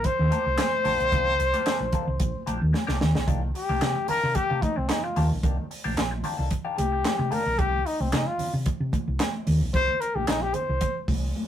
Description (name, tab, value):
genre	funk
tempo	112 BPM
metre	4/4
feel	straight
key	C dorian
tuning	A4 = 440 Hz
part	breathy trumpet	melody	0.0-11.1 s	C4 to C5	-25 LUFS	left 2 dB	none
part	semi-hollow electric guitar	accompaniment	0.0-7.5 s	Eb3 to A4	-35 LUFS	left 5 dB	wah
part	hollow-body short-scale fingered electric bass	bass	0.0-11.3 s	Bb1 to C3	-26 LUFS	equal	none
part	tight funk drum kit	drums	0.0-11.2 s	handclaps, hi-hat, kick drum, snare drum	-28 LUFS	right 1 dB	none
part	congas	percussion	0.2-11.5 s	none	-35 LUFS	equal	none
room	light reverb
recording	rough rehearsal-room recording, warm saturation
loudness	-23 LUFS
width	side -10 dB against mid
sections	0.0-3.3 A section; 3.3-11.5 B section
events	drum fill 2.7-3.3; trumpet solo 3.3-11.5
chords	0.0 Cm9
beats	0.05 0.59 | 1.13 1.66 2.20 2.74 | 3.28 3.82 4.36 4.89 | 5.43 5.97 6.51 7.05 | 7.59 8.13 8.66 9.20 | 9.74 10.28 10.82 11.35